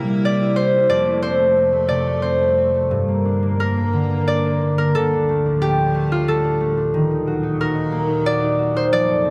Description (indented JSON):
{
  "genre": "children's music, lullaby",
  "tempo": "90 BPM",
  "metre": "3/4",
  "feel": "rubato",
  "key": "unclear",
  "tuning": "A4 = 440 Hz",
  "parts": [
    { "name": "concert harp", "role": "melody", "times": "0.0-9.3 s", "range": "F4 to D5", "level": "-22 LUFS", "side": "equal", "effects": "none" },
    { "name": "concert harp", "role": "accompaniment", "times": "0.0-9.3 s", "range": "F2 to A4", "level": "-23 LUFS", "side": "equal", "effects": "none" },
    { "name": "evolving wavetable pad", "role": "sustained chords", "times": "0.0-9.3 s", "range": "D2 to E4", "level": "-29 LUFS", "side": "equal", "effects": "phaser, built-in reverb" }
  ],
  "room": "moderate recital hall reverb, RT60 1.5 s",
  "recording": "none",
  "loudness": "-19 LUFS",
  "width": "mono",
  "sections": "0.0-9.3 A section",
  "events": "none",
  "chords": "0.0 C7; 0.9 F; 2.9 Gm; 5.0 Dm; 6.9 Ebm"
}